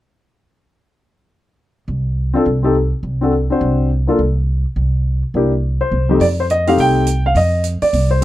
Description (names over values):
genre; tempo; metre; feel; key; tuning
jazz piano trio; 208 BPM; 4/4; swing 61% on 8ths; F mixolydian; A4 = 440 Hz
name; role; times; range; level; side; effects
upright bass; bass; 1.9-8.2 s; C2 to F2; -17 LUFS; right 1 dB; none
warm baby grand piano; melody; 2.3-8.2 s; F2 to G5; -15 LUFS; left 2 dB; none
hi-hat; drums; 6.2-8.2 s; none; -32 LUFS; right 7 dB; none
room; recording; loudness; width
little or no reverb; dark, warm production; -14 LUFS; side -14 dB against mid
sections
1.6-6.2 A section; 6.2-8.2 B section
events
none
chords
1.6 N.C.; 6.2 F7(no3)